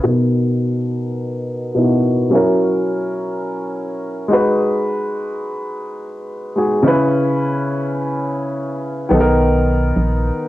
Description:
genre	afrobeats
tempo	106 BPM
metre	4/4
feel	swing 58% on 16ths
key	unclear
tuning	A4 = 440 Hz
part	warm concert grand piano	accompaniment	0.0-10.5 s	B2 to B4	-16 LUFS	equal	low-pass filter
part	organ-like FM bass	bass	9.1-10.3 s	A#1 to B1	-17 LUFS	equal	none
room	wet studio reverb, RT60 0.6 s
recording	home recording on cassette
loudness	-16 LUFS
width	side -15 dB against mid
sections	0.1-9.1 A section; 9.1-10.5 B section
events	filter sweep on grand piano 0.1-9.1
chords	0.1 Bmaj7; 2.3 F#7; 4.3 G#m7; 6.9 C#m7; 9.1 Bmaj7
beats	| 0.06 0.62 1.19 1.76 | 2.32 2.89 3.46 4.02 | 4.59 5.15 5.72 6.29 | 6.85 7.42 7.98 8.55 | 9.12 9.68 10.25

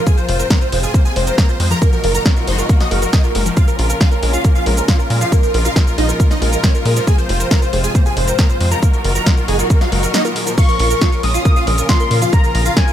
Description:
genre	uplifting trance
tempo	137 BPM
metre	4/4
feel	straight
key	Bb minor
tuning	A4 = 439 Hz
part	supersaw chords	melody	0.0-12.9 s	Db4 to Eb6	-21 LUFS	right 1 dB	phaser, wide subtle chorus, sidechain pumping, ping-pong delay
part	plucky unison lead	second line	0.0-12.9 s	Bb4 to Eb6	-26 LUFS	left 1 dB	phaser, sidechain pumping, ping-pong delay
part	rich studio string section	sustained chords	0.0-12.9 s	Ab2 to Gb4	-24 LUFS	left 1 dB	sidechain pumping
part	wide unison pluck	arpeggios	0.1-12.9 s	Bb2 to Bb4	-26 LUFS	left 3 dB	phaser, cassette tape, sidechain pumping, ping-pong delay
part	electronic kick drum	drums	0.1-12.9 s	none	-13 LUFS	equal	none
part	punchy analog drum machine	drums	0.1-12.9 s	crash cymbal, hi-hat, shaker, snare drum	-22 LUFS	equal	none
part	tight sequencer bass	bass	0.3-12.7 s	F1 to Bb2	-17 LUFS	equal	sidechain pumping
part	warm velvety synth lead	second line	10.6-12.9 s	Ab5 to Eb6	-20 LUFS	equal	chorus, tape echo
room	digital ambience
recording	none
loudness	-12 LUFS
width	side -11 dB against mid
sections	0.0-12.9 A section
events	break 10.1-10.6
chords	0.1 Fm; 1.8 Ebm/Gb; 3.6 Bbm; 7.1 Fm; 8.8 Ebm/Gb; 10.6 Bbm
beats	| 0.07 0.50 0.94 1.38 | 1.82 2.26 2.69 3.13 | 3.57 4.01 4.45 4.88 | 5.32 5.76 6.20 6.64 | 7.07 7.51 7.95 8.39 | 8.82 9.26 9.70 10.14 | 10.58 11.02 11.45 11.89 | 12.33 12.77

